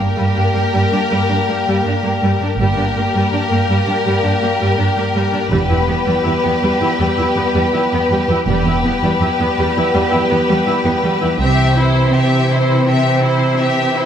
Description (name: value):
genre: cinematic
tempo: 82 BPM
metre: 4/4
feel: straight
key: unclear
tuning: A4 = 438 Hz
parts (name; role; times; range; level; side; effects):
- clear symphonic violin section; melody; 0.0-14.1 s; Bb4 to E5; -22 LUFS; left 4 dB; none
- clear symphonic violin section; second line; 0.0-14.1 s; E4 to G4; -20 LUFS; equal; none
- rich symphonic viola section; accompaniment; 0.0-14.1 s; G3 to E4; -22 LUFS; right 1 dB; none
- warm French horn section; sustained chords; 0.0-14.1 s; E3 to C4; -21 LUFS; left 2 dB; none
- rich symphonic cello section; bass; 0.0-14.1 s; E2 to C3; -18 LUFS; right 2 dB; none
- rich symphonic double bass section; bass; 2.6-12.1 s; E1 to C2; -20 LUFS; right 2 dB; none
room: moderate scoring stage reverb, RT60 1.8 s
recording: none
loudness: -13 LUFS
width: side -9 dB against mid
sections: 0.0-14.1 A section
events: build-up 0.0-14.1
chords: 0.0 Gm; 5.5 Em; 11.4 C